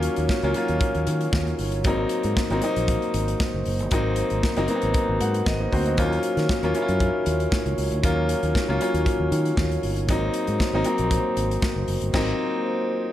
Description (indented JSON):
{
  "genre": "disco",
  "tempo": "117 BPM",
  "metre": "4/4",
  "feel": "straight",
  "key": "unclear",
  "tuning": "A4 = 441 Hz",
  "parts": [
    { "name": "clear baby grand piano", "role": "accompaniment", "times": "0.0-13.1 s", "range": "Gb3 to Gb5", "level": "-24 LUFS", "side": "left 2 dB", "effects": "none" },
    { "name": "glass harmonica", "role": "sustained chords", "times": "0.0-13.1 s", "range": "Bb3 to Db5", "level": "-31 LUFS", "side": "right 5 dB", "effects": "none" },
    { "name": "fingered electric bass", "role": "bass", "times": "0.0-12.3 s", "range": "Gb1 to Eb3", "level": "-26 LUFS", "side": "equal", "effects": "none" },
    { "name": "modern studio drum kit", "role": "drums", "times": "0.0-12.3 s", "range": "crash cymbal, hi-hat, kick drum, snare drum", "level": "-27 LUFS", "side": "equal", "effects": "none" }
  ],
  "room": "small room ambience",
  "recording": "none",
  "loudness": "-21 LUFS",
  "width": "side -12 dB against mid",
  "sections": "0.0-13.1 A section",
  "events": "grand piano fill 5.0-6.0; band accent 12.1-13.1",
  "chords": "0.0 Ebm7; 1.8 Ab9; 6.0 Ebm7; 10.1 Ab9"
}